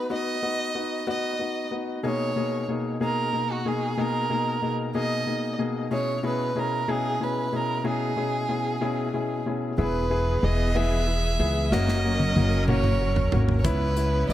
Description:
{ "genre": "six-eight pop ballad", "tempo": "62 BPM (dotted quarters)", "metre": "6/8", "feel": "straight", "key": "unclear", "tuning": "A4 = 441 Hz", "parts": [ { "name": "warm violin", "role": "melody", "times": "0.0-14.3 s", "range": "F#4 to E5", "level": "-28 LUFS", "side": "right 2 dB", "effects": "tape echo" }, { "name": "clear baby grand piano", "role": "accompaniment", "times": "0.0-14.3 s", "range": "B2 to G#4", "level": "-27 LUFS", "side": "left 2 dB", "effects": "tape echo" }, { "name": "clear studio string section", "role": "sustained chords", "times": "9.8-14.3 s", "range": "C#3 to A#4", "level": "-32 LUFS", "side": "right 2 dB", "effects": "none" }, { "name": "upright bass", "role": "bass", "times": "9.8-14.3 s", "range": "E1 to C#2", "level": "-24 LUFS", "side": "equal", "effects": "none" }, { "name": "modern studio drum kit", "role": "drums", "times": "11.7-14.3 s", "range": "hi-hat, kick drum, snare drum, toms", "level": "-27 LUFS", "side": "right 1 dB", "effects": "none" } ], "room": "light reverb, small room reverb", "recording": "echo-heavy mix", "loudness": "-23 LUFS", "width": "side -13 dB against mid", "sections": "0.0-9.8 A section; 9.8-14.3 B section", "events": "drum fill 11.7-13.6", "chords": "0.0 B; 2.0 G#sus2/B; 5.9 C#m/B; 9.8 E; 11.7 F#; 13.6 C#m7", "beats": "| 0.11 1.08 | 2.04 3.01 | 3.98 4.95 | 5.91 6.88 | 7.85 8.81 | 9.78 10.75 | 11.71 12.68 | 13.64" }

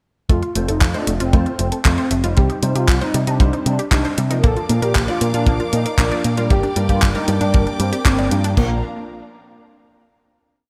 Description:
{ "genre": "italo disco", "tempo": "116 BPM", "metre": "4/4", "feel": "straight", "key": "Bb major", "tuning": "A4 = 440 Hz", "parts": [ { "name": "analog synth brass", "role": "melody", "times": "0.3-8.8 s", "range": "Bb3 to A4", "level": "-26 LUFS", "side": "equal", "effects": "chorus, vintage 12-bit sampler grit, delay" }, { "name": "unison pluck", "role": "arpeggios", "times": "0.3-8.8 s", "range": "G3 to D5", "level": "-28 LUFS", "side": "equal", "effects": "cassette tape, digital delay" }, { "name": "picked electric bass with an envelope filter", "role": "bass", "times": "0.3-8.8 s", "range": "F1 to C3", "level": "-23 LUFS", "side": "equal", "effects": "none" }, { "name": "clean 12-bit digital drum machine", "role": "drums", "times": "0.3-8.5 s", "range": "handclaps, hi-hat", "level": "-26 LUFS", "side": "equal", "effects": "overdrive, gated reverb" }, { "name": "tight funk drum kit", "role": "drums", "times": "0.3-8.7 s", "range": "china cymbal, kick drum", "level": "-19 LUFS", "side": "equal", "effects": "none" }, { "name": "clear grand piano", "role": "stabs", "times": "0.6-8.8 s", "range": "F3 to Eb5", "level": "-28 LUFS", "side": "equal", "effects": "ensemble chorus" }, { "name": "warm studio string section", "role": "sustained chords", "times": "4.4-8.8 s", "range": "D4 to D6", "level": "-31 LUFS", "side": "equal", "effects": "none" } ], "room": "light reverb, studio reverb", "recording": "bright 1980s-style digital production", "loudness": "-18 LUFS", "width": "mono", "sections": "0.3-8.6 verse; 8.6-10.6 final chord", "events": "none", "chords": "0.3 F; 2.4 Cm; 4.4 Bb; 6.5 Gm; 8.6 Bb", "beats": "| 0.30 0.81 1.33 1.85 | 2.37 2.88 3.40 3.92 | 4.43 4.95 5.47 5.99 | 6.50 7.02 7.54 8.05 | 8.57" }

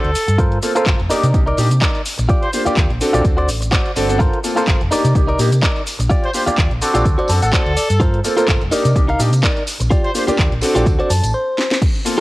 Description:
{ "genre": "filtered disco house", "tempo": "126 BPM", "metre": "4/4", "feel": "swing 55% on 16ths", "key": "unclear", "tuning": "A4 = 440 Hz", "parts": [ { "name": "bright trumpet section", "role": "melody", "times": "0.0-2.6, 6.2-10.2 s", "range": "A4 to C5", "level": "-24 LUFS", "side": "equal", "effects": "sidechain pumping, low-pass filter, cassette tape, tape echo" }, { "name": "direct-recorded clean electric guitar", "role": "riff", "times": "0.0-12.2 s", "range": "Eb4 to A5", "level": "-20 LUFS", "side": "equal", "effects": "sidechain pumping, low-pass filter, cassette tape" }, { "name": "fingered electric bass", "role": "bass", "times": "0.0-11.3 s", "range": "F1 to C3", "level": "-18 LUFS", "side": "equal", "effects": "tube saturation, sidechain pumping, low-pass filter" }, { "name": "house drum kit", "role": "drums", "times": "0.0-12.2 s", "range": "crash cymbal, handclaps, hi-hat, shaker, snare drum", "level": "-23 LUFS", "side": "equal", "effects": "overdrive, sidechain pumping on hats, cassette tape, sidechain pumping on perc, sidechain pumping on cymbals" }, { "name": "tambourine", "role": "percussion", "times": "0.2-11.3 s", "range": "none", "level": "-34 LUFS", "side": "right 1 dB", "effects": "none" }, { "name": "electronic kick drum", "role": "drums", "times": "0.4-11.9 s", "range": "none", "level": "-17 LUFS", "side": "equal", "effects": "overdrive, cassette tape" }, { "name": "clear baby grand piano", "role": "accompaniment", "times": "0.6-12.2 s", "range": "Bb3 to A4", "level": "-20 LUFS", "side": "equal", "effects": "phaser, sidechain pumping, low-pass filter, cassette tape" } ], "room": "light reverb", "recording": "home recording on cassette", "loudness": "-14 LUFS", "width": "side -18 dB against mid", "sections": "0.0-11.8 A section", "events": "clean electric guitar fill 7.1-8.0, 10.9-11.8; break 11.3-11.8; drum fill 11.6", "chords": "0.4 Gm11; 1.1 Cm9; 2.3 Ebmaj9; 3.2 D7; 4.2 Gm11; 4.9 Cm9; 6.1 Ebmaj9; 7.1 D7; 8.0 Gm11; 8.7 Cm9; 9.9 Ebmaj9; 10.9 D7", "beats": "| 0.39 0.86 1.34 1.82 | 2.29 2.77 3.25 3.72 | 4.20 4.67 5.15 5.63 | 6.10 6.58 7.06 7.53 | 8.01 8.48 8.96 9.44 | 9.91 10.39 10.87 11.34 | 11.82" }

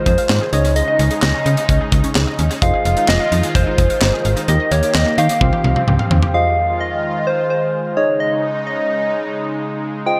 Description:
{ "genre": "synth-pop", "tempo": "129 BPM", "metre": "4/4", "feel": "straight", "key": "F minor", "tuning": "A4 = 440 Hz", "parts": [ { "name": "soft struck synth lead", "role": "melody", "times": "0.0-10.2 s", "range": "C5 to G5", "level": "-22 LUFS", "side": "equal", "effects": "chorus, tremolo, dub echo, shimmer reverb" }, { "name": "FM electric piano", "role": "accompaniment", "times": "0.0-10.2 s", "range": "Eb4 to F5", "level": "-27 LUFS", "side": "equal", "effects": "dub echo, shimmer reverb" }, { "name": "lush unison pad", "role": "sustained chords", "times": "0.0-10.2 s", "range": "Db3 to G4", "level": "-26 LUFS", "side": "equal", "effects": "chorus, phaser, shimmer reverb" }, { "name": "unison pluck", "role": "arpeggios", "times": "0.0-6.3 s", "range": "Bb3 to F5", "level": "-30 LUFS", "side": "equal", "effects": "dub echo, shimmer reverb" }, { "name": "slap-like FM bass", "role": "bass", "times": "0.1-6.2 s", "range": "F1 to Eb3", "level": "-19 LUFS", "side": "equal", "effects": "none" }, { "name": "modern studio drum kit", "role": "drums", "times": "0.1-6.3 s", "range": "handclaps, hi-hat, kick drum, snare drum, toms", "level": "-21 LUFS", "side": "equal", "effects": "dub echo" } ], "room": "wet spring reverb, RT60 2.0 s, studio reverb", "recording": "echo-heavy mix", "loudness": "-17 LUFS", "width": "mono", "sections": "0.0-6.3 A section; 6.3-10.2 A section", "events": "drum fill 5.4-6.3", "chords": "0.0 Fm7; 0.5 Dbsus2; 2.6 Fm7; 4.5 Eb; 5.4 Csus4; 6.3 Fm7; 8.0 Dbsus2", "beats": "0.29 | 0.76 1.23 1.69 2.15 | 2.62 3.09 3.55 4.02 | 4.48 4.95 5.41 5.88 | 6.34 6.81 7.27 7.74 | 8.20 8.67 9.13 9.60 | 10.06" }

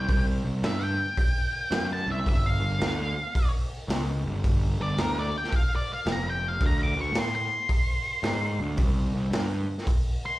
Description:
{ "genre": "blues rock power trio and southern rock", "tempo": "110 BPM", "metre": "4/4", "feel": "swing 66% on 8ths", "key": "unclear", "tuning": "A4 = 440 Hz", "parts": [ { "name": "octave-fuzz lead guitar", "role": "melody", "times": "0.0-10.4 s", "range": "Bb4 to D6", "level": "-30 LUFS", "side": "left 1 dB", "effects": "distortion, slapback echo" }, { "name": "fuzz picked electric bass", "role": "bass", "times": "0.0-9.7 s", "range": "F1 to A2", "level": "-28 LUFS", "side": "equal", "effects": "overdrive" }, { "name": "raw garage drum kit", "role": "drums", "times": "0.1-10.0 s", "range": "hi-hat, kick drum, snare drum", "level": "-27 LUFS", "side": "equal", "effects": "none" } ], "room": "little or no reverb", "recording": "live gig heard through the venue's PA, club reverb", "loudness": "-24 LUFS", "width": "side -17 dB against mid", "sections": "0.0-10.4 A section", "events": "lead electric guitar solo 0.0-10.4", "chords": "0.0 C5; 2.3 G5; 6.6 D5; 8.8 C5", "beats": "| 0.09 0.64 1.18 1.72 | 2.27 2.81 3.35 3.90 | 4.44 4.98 5.53 6.07 | 6.61 7.16 7.70 8.24 | 8.79 9.33 9.87" }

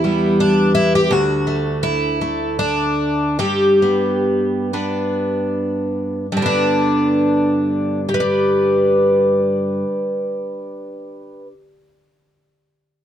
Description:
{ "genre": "folk, solo fingerstyle acoustic guitar", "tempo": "51-84 BPM", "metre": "3/4", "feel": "straight", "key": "G major", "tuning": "A4 = 440 Hz", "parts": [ { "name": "picked twelve-string acoustic guitar", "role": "solo", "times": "0.0-11.5 s", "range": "D2 to D5", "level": "-16 LUFS", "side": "equal", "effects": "none" } ], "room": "light reverb", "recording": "dark, warm production", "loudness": "-15 LUFS", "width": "side -10 dB against mid", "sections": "0.0-6.3 A section; 6.3-13.0 B section", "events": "slowing down 1.1-6.3", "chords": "0.0 Em; 1.1 Dadd9; 3.4 G", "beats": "0.40 | 1.11 1.83 2.59 | 3.38 4.25 5.21 | 6.32 7.50 8.67 | 9.84 11.00" }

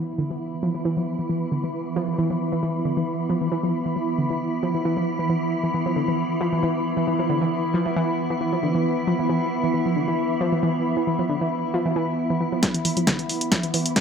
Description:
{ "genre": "driving peak-time techno", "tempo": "135 BPM", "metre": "4/4", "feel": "straight", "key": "unclear", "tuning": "A4 = 441 Hz", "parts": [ { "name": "warbly dusty pluck", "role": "riff", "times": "0.0-13.9 s", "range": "D3 to F3", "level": "-25 LUFS", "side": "equal", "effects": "chorus, sidechain pumping, tape echo" }, { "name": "swarming drone", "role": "drone", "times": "0.0-14.0 s", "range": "E3 to E4", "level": "-28 LUFS", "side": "right 1 dB", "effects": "built-in reverb, sidechain pumping" }, { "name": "warbly tape-like pad", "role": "texture", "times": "0.0-14.0 s", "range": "B3 to B5", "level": "-26 LUFS", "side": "equal", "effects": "chorus, built-in reverb, sidechain pumping" }, { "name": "electronic kick drum", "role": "drums", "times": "12.6-14.0 s", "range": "none", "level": "-25 LUFS", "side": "equal", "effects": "high-pass filter on kick" }, { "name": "punchy analog drum machine", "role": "drums", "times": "12.6-14.0 s", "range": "hi-hat, snare drum", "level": "-23 LUFS", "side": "equal", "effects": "sidechain pumping on hats, low-pass filter on hats, low-pass filter on snare" } ], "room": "wet lush hall reverb, RT60 1.5 s", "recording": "none", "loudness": "-21 LUFS", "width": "side -6 dB against mid", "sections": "0.0-12.6 A section; 12.6-14.0 B section", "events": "filter sweep on synth arpeggio sound 0.0-12.6, 12.6-14.0; build-up 12.6-14.0; drum fill 12.6-14.0", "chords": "0.0 E5", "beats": "| 0.18 0.63 1.07 1.52 | 1.96 2.41 2.85 3.29 | 3.74 4.18 4.63 5.07 | 5.52 5.96 6.41 6.85 | 7.29 7.74 8.18 8.63 | 9.07 9.52 9.96 10.41 | 10.85 11.29 11.74 12.18 | 12.63 13.07 13.52 13.96" }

